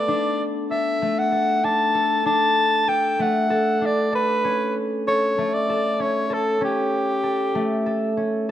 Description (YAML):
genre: contemporary instrumental, contemporary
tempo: 193 BPM (eighths)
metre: 7/8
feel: straight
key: unclear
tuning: A4 = 440 Hz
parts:
  - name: breathy soprano saxophone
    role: melody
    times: 0.0-8.1 s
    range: G4 to A5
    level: -21 LUFS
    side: equal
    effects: none
  - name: concert harp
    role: arpeggios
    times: 0.0-8.5 s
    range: A3 to A4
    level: -23 LUFS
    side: left 1 dB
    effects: none
room: moderate recital hall reverb, RT60 1.9 s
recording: close, detailed microphones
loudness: -19 LUFS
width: side -11 dB against mid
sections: 0.0-8.5 A section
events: none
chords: 0.1 D; 4.4 A7